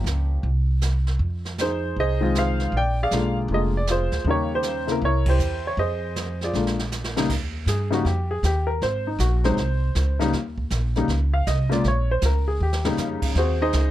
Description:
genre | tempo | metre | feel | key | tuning
jazz piano trio | 158 BPM | 4/4 | swing 65% on 8ths | Eb mixolydian | A4 = 440 Hz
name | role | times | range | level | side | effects
warm upright piano | melody | 0.0-13.9 s | C3 to G5 | -24 LUFS | left 1 dB | none
upright bass | bass | 0.0-13.9 s | F1 to G2 | -23 LUFS | equal | none
jazz brush drum kit | drums | 0.1-13.9 s | brushed snare drum, crash cymbal, hi-hat, kick drum, ride cymbal, snare drum | -31 LUFS | right 2 dB | none
room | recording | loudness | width
little or no reverb | close, detailed microphones | -20 LUFS | side -13 dB against mid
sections
0.0-7.3 A section; 7.3-13.9 B section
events
band accent 5.2; drum fill 6.5-7.3, 12.6-13.0; upright piano solo 7.3-13.9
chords
0.4 N.C.; 1.2 Fm7; 2.7 Bb7; 4.3 Eb7; 5.0 C7; 5.8 Fm7; 6.5 Bb7; 7.3 Eb; 8.8 Ab7; 10.3 Eb7(no3); 11.8 Bbm; 12.6 Eb7; 13.4 Ab7

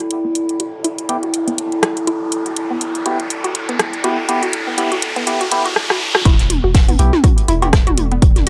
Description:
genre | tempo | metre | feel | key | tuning
minimal techno | 122 BPM | 4/4 | swing 57% on 16ths | E minor | A4 = 441 Hz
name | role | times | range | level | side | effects
hollow square pluck | riff | 0.0-8.5 s | B3 to F#4 | -26 LUFS | equal | chorus, sidechain pumping, tape echo
house drum kit | drums | 0.0-8.5 s | hi-hat, rim click | -21 LUFS | equal | none
riser | sound effects | 0.4-6.3 s | none | -26 LUFS | equal | none
warbly tape-like pad | texture | 0.0-8.5 s | E4 to G5 | -26 LUFS | equal | chorus, built-in reverb, sidechain pumping
percussive organ stab | stabs | 1.1-7.7 s | B3 to G4 | -24 LUFS | equal | chorus, analog delay
punchy sub bass | bass | 6.3-8.5 s | E1 to B1 | -19 LUFS | equal | sidechain pumping
electronic kick drum | drums | 6.3-8.3 s | none | -14 LUFS | equal | none
jazz brush drum kit | drums | 6.3-8.5 s | hi-hat, snare drum | -31 LUFS | equal | sidechain pumping on hats, high-pass filter on hats, high-pass filter on snare, high-pass filter on room
electronic cowbell and toms | percussion | 6.3-8.4 s | none | -23 LUFS | equal | analog delay
room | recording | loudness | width
moderate studio reverb, RT60 0.5 s | high-pass filter | -17 LUFS | mono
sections
0.0-6.3 A section; 6.3-8.5 B section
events
build-up 0.0-6.3; filter sweep on synth arpeggio sound 0.0-6.3; filter sweep on synth stab 0.0-6.3; filter sweep 0.0-6.3; riser 0.4-6.3; drum fill 5.8-6.3; drop 6.3-8.5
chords
0.0 Em

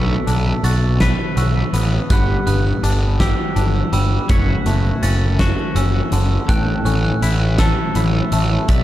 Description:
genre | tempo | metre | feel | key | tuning
post-rock | 55 BPM (dotted quarters) | 6/8 | straight | unclear | A4 = 439 Hz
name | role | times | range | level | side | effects
pedal steel guitar | sustained chords | 0.0-8.8 s | F#4 to C#6 | -32 LUFS | left 1 dB | lush chorus
glockenspiel with brass mallets | arpeggios | 0.0-8.8 s | E6 to B6 | -28 LUFS | right 6 dB | digital delay
twangy electric guitar | arpeggios | 0.0-8.8 s | D2 to B4 | -25 LUFS | left 2 dB | tremolo, digital delay
fuzz picked electric bass | bass | 0.0-8.8 s | F#1 to B1 | -17 LUFS | equal | overdrive
huge arena drum kit | drums | 0.3-8.8 s | hi-hat, kick drum, snare drum | -20 LUFS | equal | none
room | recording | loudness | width
small room ambience | dark, warm production | -15 LUFS | side -14 dB against mid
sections
0.0-8.8 A section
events
none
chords
0.0 Bm11; 2.1 Gmaj7; 4.3 Dmaj7/F#; 6.5 A7

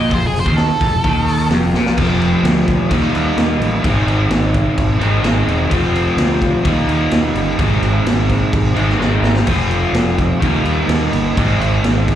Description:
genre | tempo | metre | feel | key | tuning
garage rock duo or trio | 128 BPM | 4/4 | straight | unclear | A4 = 439 Hz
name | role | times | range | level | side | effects
octave-fuzz lead guitar | melody | 0.0-1.5 s | Ab4 to Eb5 | -19 LUFS | right 2 dB | distortion, slapback echo, tape echo
crunchy overdriven guitar | riff | 0.0-12.2 s | F2 to F4 | -17 LUFS | equal | none
growling fingered electric bass | bass | 0.0-12.2 s | E1 to Eb2 | -18 LUFS | equal | overdrive
raw garage drum kit | drums | 0.1-12.2 s | crash cymbal, hi-hat, kick drum, snare drum | -19 LUFS | equal | none
room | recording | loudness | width
little or no reverb | live gig heard through the venue's PA, club reverb | -13 LUFS | side -11 dB against mid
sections
0.0-2.0 A section; 2.0-12.2 B section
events
lead electric guitar solo 0.0-2.0; drum fill 1.7, 9.0-9.5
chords
0.0 F5; 2.0 F; 2.9 Eb; 3.8 Ab; 5.7 F; 6.6 Eb; 7.6 Ab; 9.5 F; 10.4 Eb; 11.4 Ab

